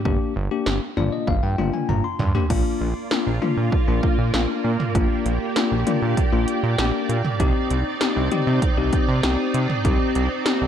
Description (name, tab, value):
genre	synth-pop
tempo	98 BPM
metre	4/4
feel	straight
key	unclear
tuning	A4 = 436 Hz
part	bell-like tine electric piano	accompaniment	0.1-10.6 s	Bb3 to C6	-24 LUFS	left 7 dB	none
part	fat analog bass	bass	0.1-10.7 s	G1 to C3	-23 LUFS	right 1 dB	none
part	80s electronic pad drums	drums	0.1-10.6 s	crash cymbal, hi-hat, kick drum, snare drum, toms	-23 LUFS	right 1 dB	gated reverb on snare and toms
part	string machine, violins	sustained chords	2.5-10.7 s	Bb3 to D5	-26 LUFS	right 4 dB	ensemble chorus
room	light reverb, digital ambience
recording	dark, warm production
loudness	-19 LUFS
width	side -9 dB against mid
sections	0.0-2.5 A section; 2.5-10.7 B section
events	tine electric piano fill 0.7-2.5; drum fill 1.3-2.5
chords	0.0 Gm; 2.5 Bb; 7.4 Cmadd9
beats	| 0.05 0.67 1.28 1.89 | 2.50 3.11 3.73 4.34 | 4.95 5.56 6.17 6.79 | 7.40 8.01 8.62 9.24 | 9.85 10.46